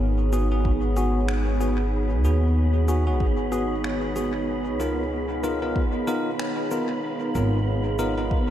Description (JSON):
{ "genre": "ambient dub", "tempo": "94 BPM", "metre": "4/4", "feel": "swing 58% on 16ths", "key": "G# dorian", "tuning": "A4 = 438 Hz", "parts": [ { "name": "deep dark ambient pad", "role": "sustained chords", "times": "0.0-8.5 s", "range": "B3 to F#5", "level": "-28 LUFS", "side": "right 1 dB", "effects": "chorus, built-in reverb" }, { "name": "upright bass", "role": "bass", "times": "0.0-8.3 s", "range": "G#1 to D#2", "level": "-24 LUFS", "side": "equal", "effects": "tube saturation" }, { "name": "wind-like tuned noise texture", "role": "texture", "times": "0.0-8.5 s", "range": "B3 to B5", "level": "-36 LUFS", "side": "equal", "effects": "built-in reverb" }, { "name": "bell-like tine electric piano", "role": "stabs", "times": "0.3-8.4 s", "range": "B3 to A#4", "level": "-28 LUFS", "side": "left 1 dB", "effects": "wide subtle chorus, dub echo" }, { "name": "electronic shaker and finger snaps", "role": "drums", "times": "0.3-8.1 s", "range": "none", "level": "-40 LUFS", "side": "equal", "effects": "overdrive, dub echo" }, { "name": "electronic kick drum", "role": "drums", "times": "0.7-8.5 s", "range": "none", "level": "-25 LUFS", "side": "equal", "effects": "overdrive" } ], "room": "moderate cathedral reverb, RT60 6.4 s", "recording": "dreamy mix soaked in reverb", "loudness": "-22 LUFS", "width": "side -11 dB against mid", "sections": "0.0-8.5 A section", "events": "none", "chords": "0.0 G#m7; 4.5 C#13" }